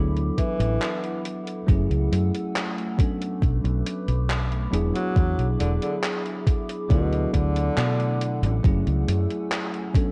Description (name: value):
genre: vaporwave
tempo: 69 BPM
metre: 4/4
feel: straight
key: unclear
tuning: A4 = 440 Hz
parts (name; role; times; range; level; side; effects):
- bell-like tine electric piano; accompaniment; 0.0-10.1 s; F#3 to A4; -31 LUFS; equal; subtle chorus
- warbly tape-like pad; sustained chords; 0.0-10.1 s; A3 to E6; -39 LUFS; equal; chorus, built-in reverb, phaser
- fingered electric bass; bass; 0.0-9.3 s; E1 to B2; -26 LUFS; equal; none
- gated 80s digital drum machine; drums; 0.2-10.1 s; handclaps, hi-hat; -34 LUFS; equal; gated reverb, overdrive
- breathy tenor saxophone; melody; 0.4-8.6 s; B2 to F#3; -33 LUFS; equal; tape echo
- electronic kick drum; drums; 0.4-10.1 s; none; -24 LUFS; equal; overdrive
room: light reverb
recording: cassette tape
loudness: -24 LUFS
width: mono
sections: 0.0-1.7 A section; 1.7-10.1 B section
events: none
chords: 0.0 D6; 1.7 F#m9; 3.0 Bm9; 4.7 E7; 6.9 D6; 8.6 F#m9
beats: 0.81 | 1.69 2.56 3.42 4.29 | 5.16 6.03 6.90 7.77 | 8.64 9.51